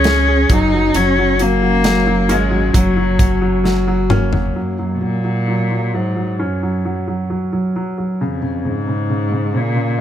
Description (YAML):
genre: pop ballad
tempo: 66 BPM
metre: 4/4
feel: straight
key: F# major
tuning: A4 = 441 Hz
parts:
  - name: rich cello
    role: melody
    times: 0.0-10.0 s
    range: E#2 to D#4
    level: -18 LUFS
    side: left 1 dB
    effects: none
  - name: clear concert grand piano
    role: accompaniment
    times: 0.0-10.0 s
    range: C#3 to G#4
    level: -20 LUFS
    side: right 1 dB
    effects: none
  - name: picked steel-string acoustic guitar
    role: arpeggios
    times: 0.0-5.2 s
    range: F#2 to G#4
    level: -22 LUFS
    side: left 7 dB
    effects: none
  - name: warm sub bass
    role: bass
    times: 0.0-4.5 s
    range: F#1 to C#2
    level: -20 LUFS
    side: right 1 dB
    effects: none
  - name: modern studio drum kit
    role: drums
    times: 0.0-4.5 s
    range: hi-hat, kick drum, snare drum, toms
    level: -17 LUFS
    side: equal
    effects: none
room: studio reverb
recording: none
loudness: -14 LUFS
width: side -10 dB against mid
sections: 0.0-4.6 A section; 4.6-10.0 B section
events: drum fill 3.6-4.6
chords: 0.5 F#; 8.2 C#5